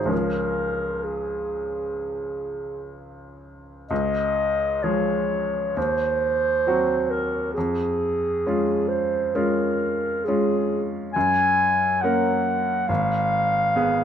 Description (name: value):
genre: classical, romantic duo for clarinet and grand piano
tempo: 65 BPM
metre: 4/4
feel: uneven beats, rubato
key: Db major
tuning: A4 = 440 Hz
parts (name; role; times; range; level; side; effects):
- dark clarinet; melody; 0.0-14.0 s; Ab4 to Ab5; -23 LUFS; equal; none
- bright baby grand piano; accompaniment; 0.0-14.0 s; Ab1 to Bb4; -25 LUFS; equal; none
room: light reverb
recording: dark, warm production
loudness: -21 LUFS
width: side -8 dB against mid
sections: 0.0-3.9 A section; 3.9-14.0 B section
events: none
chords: 0.1 Db; 5.8 Cdim/Eb; 7.6 Db/F; 11.2 Gb; 12.9 Fdim/Ab